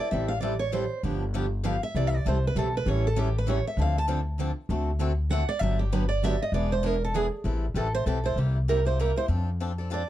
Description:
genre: acoustic string swing (jazz manouche)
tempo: 196 BPM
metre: 3/4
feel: swing 59% on 8ths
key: A minor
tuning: A4 = 438 Hz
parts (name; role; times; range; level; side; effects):
- picked steel-string acoustic guitar; melody; 0.0-10.1 s; G4 to A5; -29 LUFS; right 3 dB; none
- picked swing-style acoustic guitar; accompaniment; 0.0-10.0 s; C3 to A4; -34 LUFS; left 6 dB; none
- picked steel-string acoustic guitar; accompaniment; 0.1-7.3 s; C3 to B4; -33 LUFS; right 6 dB; none
- upright bass; bass; 0.1-10.0 s; E1 to F2; -27 LUFS; left 1 dB; none
room: little or no reverb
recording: dark, warm production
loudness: -24 LUFS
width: side -13 dB against mid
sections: 0.1-7.5 A section; 7.5-10.1 A section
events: steel-string acoustic guitar solo 0.0-7.5, 7.5-10.1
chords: 0.1 Am7; 1.0 G7; 2.0 C6; 2.9 A7; 3.8 Dm7; 4.7 D7; 5.6 Gmaj7; 6.5 E7; 7.5 Am7; 8.4 C7; 9.3 F6

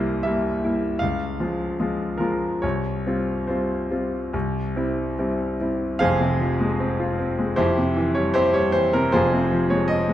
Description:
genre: classical, romantic character piece for solo piano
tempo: 68-80 BPM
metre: 4/4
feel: rubato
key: F minor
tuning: A4 = 440 Hz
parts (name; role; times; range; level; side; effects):
- bright concert grand piano; solo; 0.0-10.1 s; F1 to F5; -20 LUFS; equal; none
room: wet recital hall reverb, RT60 1.6 s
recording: dark, warm production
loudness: -20 LUFS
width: side -12 dB against mid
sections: 0.0-6.0 A section; 6.0-10.1 B section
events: none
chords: 0.0 C7; 1.0 Db; 2.6 Csus4; 4.3 C; 6.0 Fm; 7.6 C/F; 9.1 Fm

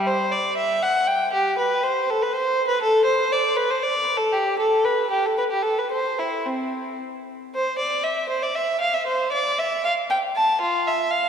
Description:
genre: classical, baroque-style suite movement for unaccompanied violin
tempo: 118 BPM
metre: 3/4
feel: rubato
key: C major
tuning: A4 = 439 Hz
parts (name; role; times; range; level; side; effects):
- rich violin; solo; 0.0-11.3 s; C4 to A5; -20 LUFS; equal; none
room: wet church reverb, RT60 3.3 s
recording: recorded in a church or concert hall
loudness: -20 LUFS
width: side -7 dB against mid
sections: 0.0-7.5 A section; 7.5-11.3 B section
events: none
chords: none

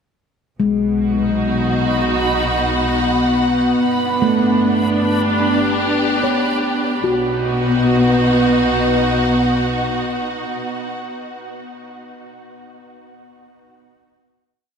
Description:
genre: ambient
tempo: 75 BPM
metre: 4/4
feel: straight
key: unclear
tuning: A4 = 440 Hz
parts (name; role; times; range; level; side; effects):
- clear symphonic string section; sustained chords; 0.6-11.0 s; B2 to F#5; -18 LUFS; left 1 dB; shimmer reverb
- handpan; arpeggios; 0.6-10.6 s; G#3 to C#5; -21 LUFS; equal; ping-pong delay, shimmer reverb
- rich symphonic double bass section; bass; 0.6-9.4 s; G1 to B1; -28 LUFS; right 1 dB; none
- analog drone; drone; 2.6-10.6 s; B3; -23 LUFS; right 1 dB; chorus
- backwards swelling texture; texture; 1.9-7.0 s; B5; -28 LUFS; right 2 dB; built-in reverb, shimmer reverb
room: wet huge ambient reverb, RT60 7.5 s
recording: cassette tape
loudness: -15 LUFS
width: side -6 dB against mid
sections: 0.6-7.0 A section; 7.0-10.2 final chord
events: fade-out on double bass section 0.6-7.0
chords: 0.6 B; 3.8 G; 7.0 B

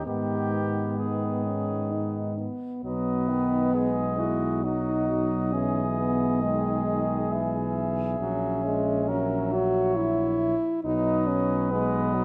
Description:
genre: classical, brass quintet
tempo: 67 BPM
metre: 3/4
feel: rubato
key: B major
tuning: A4 = 442 Hz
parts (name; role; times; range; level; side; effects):
- mellow cornet; melody; 0.0-12.2 s; G4 to E5; -36 LUFS; equal; none
- mellow trumpet; second line; 0.0-12.2 s; B3 to C#5; -37 LUFS; equal; none
- brilliant trombone; accompaniment; 0.0-12.2 s; D#3 to G#3; -35 LUFS; equal; none
- clear French horn; accompaniment; 0.0-12.2 s; G#3 to F#4; -30 LUFS; equal; none
- mellow tuba; bass; 0.0-12.2 s; A#1 to G#2; -32 LUFS; equal; none
room: moderate recital hall reverb, RT60 1.6 s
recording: close, detailed microphones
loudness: -26 LUFS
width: mono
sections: 0.0-2.8 A section; 2.8-12.2 B section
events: none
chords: 0.1 G#m; 2.8 B; 5.5 E/B; 8.2 F#7/A#; 10.8 B

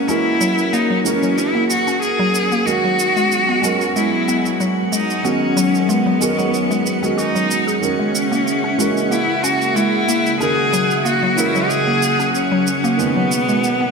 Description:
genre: organic downtempo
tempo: 93 BPM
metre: 4/4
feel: swing 54% on 16ths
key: G# minor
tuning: A4 = 441 Hz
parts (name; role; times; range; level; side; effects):
- clear cello; melody; 0.0-13.9 s; B3 to G#4; -18 LUFS; left 1 dB; digital delay
- felt-muted upright piano; accompaniment; 0.0-13.9 s; D#3 to A#4; -24 LUFS; right 3 dB; analog chorus, low-pass filter, digital delay
- warbly tape-like pad; sustained chords; 0.0-13.9 s; B2 to E5; -23 LUFS; equal; chorus, built-in reverb, phaser
- drifting glass-harmonics texture; texture; 0.0-13.9 s; F#5; -27 LUFS; right 4 dB; chorus, built-in reverb
- mallet-like synth pluck; arpeggios; 0.1-13.9 s; F#3 to G#4; -22 LUFS; left 1 dB; chorus, digital delay
- cabasa; drums; 0.1-13.8 s; none; -28 LUFS; right 4 dB; overdrive
room: wet lush hall reverb, RT60 2.4 s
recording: bright 1980s-style digital production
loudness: -15 LUFS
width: side -4 dB against mid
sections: 0.0-13.9 A section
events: filter sweep on synth pluck 0.0-13.9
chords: 0.1 F#7; 2.7 G#m7; 7.8 A#m7b5; 13.0 G#m7

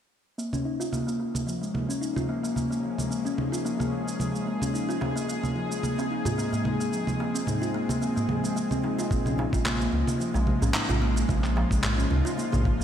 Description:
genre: organic downtempo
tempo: 110 BPM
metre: 4/4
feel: swing 54% on 16ths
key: Bb minor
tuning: A4 = 441 Hz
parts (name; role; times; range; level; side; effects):
- bowed-like drone; sustained chords; 1.5-12.8 s; Db3 to C5; -32 LUFS; left 2 dB; built-in reverb, sidechain pumping, shimmer reverb
- kalimba; arpeggios; 0.4-12.8 s; F3 to F4; -29 LUFS; equal; low-pass filter, digital delay, shimmer reverb
- electronic cabasa, congas and handclaps; drums; 0.4-12.8 s; none; -31 LUFS; right 1 dB; none
- darbuka; percussion; 4.9-12.8 s; none; -35 LUFS; right 1 dB; none
- smooth synth bass; bass; 9.1-12.8 s; Bb1 to Db2; -26 LUFS; equal; tube saturation, sidechain pumping
- electronic kick drum; drums; 9.1-12.8 s; none; -27 LUFS; equal; none
room: wet lush hall reverb, RT60 2.5 s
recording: bright 1980s-style digital production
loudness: -25 LUFS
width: side -9 dB against mid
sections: 0.4-9.1 A section; 9.1-12.8 B section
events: filter sweep on kalimba 0.4-9.1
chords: 0.4 Bbm7; 4.7 Fm7; 9.1 Bbm7

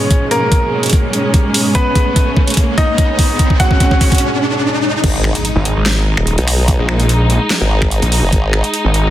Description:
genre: heavy wobble dubstep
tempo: 146 BPM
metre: 4/4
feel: swing 53% on 16ths, half-time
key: G# minor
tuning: A4 = 441 Hz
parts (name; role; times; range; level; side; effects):
- bright grand piano; melody; 0.0-4.2 s; A#3 to F#5; -19 LUFS; equal; tape echo
- rich studio string section; sustained chords; 0.0-9.1 s; G#2 to D#4; -19 LUFS; right 1 dB; sidechain pumping, low-pass filter
- riser and impact; sound effects; 0.0-6.7 s; none; -20 LUFS; equal; none
- dubstep drum kit; drums; 0.1-9.0 s; crash cymbal, finger snaps, handclaps, hi-hat, snare drum; -19 LUFS; right 1 dB; none
- electronic kick drum; drums; 0.1-8.4 s; none; -13 LUFS; equal; overdrive
- formant-sweep wobble bass; bass; 5.0-8.6 s; F#1 to B1; -15 LUFS; equal; chorus, overdrive
- snarling distorted saw bass; bass; 5.6-9.1 s; D#1 to A#1; -13 LUFS; equal; distortion, overdrive
room: light reverb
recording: dense, heavily limited modern master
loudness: -11 LUFS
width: side -13 dB against mid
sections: 0.0-5.0 A section; 5.0-9.1 B section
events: build-up 0.0-5.0; drum fill 0.0-4.2; riser 0.0-5.0; break 4.2-5.0; drop 5.0-9.1; impact 5.0-6.7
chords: 0.0 G#m; 5.0 G#5

